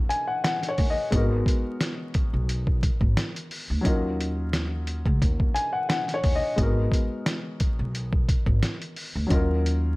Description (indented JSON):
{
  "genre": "hip hop, boom-bap hip-hop",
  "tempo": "88 BPM",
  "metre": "4/4",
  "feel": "swing 54% on 16ths",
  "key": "G# dorian",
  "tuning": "A4 = 440 Hz",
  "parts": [
    { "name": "dark grand piano", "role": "accompaniment", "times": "0.0-10.0 s", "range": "F#3 to G#5", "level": "-28 LUFS", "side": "left 2 dB", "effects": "cassette tape, high-pass filter, low-pass filter" },
    { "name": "upright bass", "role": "bass", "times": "0.0-10.0 s", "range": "G#1 to D#2", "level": "-26 LUFS", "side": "equal", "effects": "none" },
    { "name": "trip hop sampler-style drum kit", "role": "drums", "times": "0.1-9.8 s", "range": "hi-hat, kick drum, snare drum", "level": "-25 LUFS", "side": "equal", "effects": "none" }
  ],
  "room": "small room reverb",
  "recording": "vinyl crackle",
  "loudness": "-22 LUFS",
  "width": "side -22 dB against mid",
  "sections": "0.0-10.0 A section",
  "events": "none",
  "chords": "0.0 D#m7; 1.1 G#m7; 3.9 D#m7; 6.6 G#m7; 9.3 D#m7",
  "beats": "0.44 | 1.12 1.81 2.49 3.17 | 3.85 4.53 5.21 5.90 | 6.58 7.26 7.94 8.62 | 9.31"
}